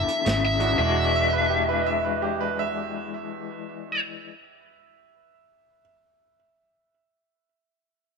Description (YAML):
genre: electric blues shuffle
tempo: 111 BPM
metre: 4/4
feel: swing 64% on 8ths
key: E mixolydian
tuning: A4 = 440 Hz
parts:
  - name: lead guitar through a small cranked amp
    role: melody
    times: 0.0-4.0 s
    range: E5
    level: -25 LUFS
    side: left 2 dB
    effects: overdrive
  - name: electric guitar through a small old amp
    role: riff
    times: 0.0-4.3 s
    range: E2 to F#4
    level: -29 LUFS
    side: left 13 dB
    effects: tremolo
  - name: vintage muted fingered electric bass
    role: bass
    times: 0.0-4.0 s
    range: E1 to G#1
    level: -29 LUFS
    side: right 1 dB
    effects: none
  - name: crunchy breakbeat drum kit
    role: drums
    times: 0.1-0.7 s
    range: hi-hat, snare drum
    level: -29 LUFS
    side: right 1 dB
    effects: none
  - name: bright grand piano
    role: accompaniment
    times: 0.6-4.2 s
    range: E2 to F#4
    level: -33 LUFS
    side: right 13 dB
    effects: none
  - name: bright upright piano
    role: second line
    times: 1.1-5.8 s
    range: G4 to E5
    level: -29 LUFS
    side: right 11 dB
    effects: tape echo
room: moderate echo chamber reverb, RT60 2.1 s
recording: 1960s-style stereo with parts hard left and right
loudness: -22 LUFS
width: side -5 dB against mid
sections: 0.8-5.1 A section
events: none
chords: 0.0 E9